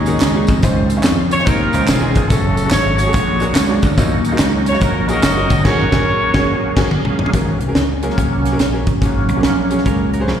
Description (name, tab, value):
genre	uptempo gospel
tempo	143 BPM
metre	4/4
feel	swing 65% on 8ths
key	unclear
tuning	A4 = 440 Hz
part	mellow horn section	melody	0.0-6.9 s	C4 to Eb5	-18 LUFS	equal	plate reverb, slapback echo
part	bright tonewheel organ	sustained chords	0.0-10.1 s	Db3 to Ab4	-22 LUFS	right 3 dB	fast rotary speaker, chorus vibrato, plate reverb
part	dry thumbed slap bass	bass	0.0-10.4 s	Fb1 to F2	-18 LUFS	equal	none
part	bright upright piano	accompaniment	0.1-10.3 s	Ab2 to Db5	-23 LUFS	left 1 dB	plate reverb, slapback echo
part	tight funk drum kit	drums	0.1-10.4 s	crash cymbal, hi-hat, kick drum, snare drum, toms	-17 LUFS	equal	none
part	tambourine and handclaps	percussion	0.1-5.6 s	none	-28 LUFS	right 2 dB	slapback echo
part	dark French horn section	sustained chords	7.3-10.4 s	Gb3 to Db4	-29 LUFS	equal	none
part	semi-hollow electric guitar	second line	9.9-10.4 s	F4 to Db5	-28 LUFS	right 8 dB	plate reverb, slapback echo, tape echo
room	light reverb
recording	live gig heard through the venue's PA, recital hall reverb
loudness	-13 LUFS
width	side -9 dB against mid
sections	0.0-7.3 A section; 7.3-10.4 B section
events	band accent 5.7-7.3; drum fill 6.5-7.3; tonewheel organ solo 7.3-10.4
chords	0.0 Ab7sus4; 0.6 Dbmaj9; 2.3 Gbmadd9; 3.1 Bb7alt; 4.0 Ebm9; 5.7 Ab9sus4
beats	0.21 | 0.63 1.05 1.47 1.88 | 2.30 2.72 3.14 3.56 | 3.98 4.40 4.82 5.24 | 5.66 6.07 6.49 6.91 | 7.33 7.75 8.17 8.60 | 9.02 9.44 9.86 10.28